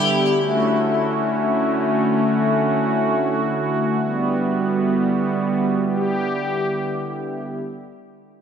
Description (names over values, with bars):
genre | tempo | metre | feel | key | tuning
dream pop | 66 BPM | 4/4 | straight | E dorian | A4 = 440 Hz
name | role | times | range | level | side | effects
warm analog pad | sustained chords | 0.0-7.6 s | D3 to G4 | -19 LUFS | equal | chorus
room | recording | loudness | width
moderate plate reverb, RT60 2.9 s | none | -18 LUFS | side -8 dB against mid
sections
0.0-7.6 A section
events
none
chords
0.4 Dmaj9; 4.0 Em9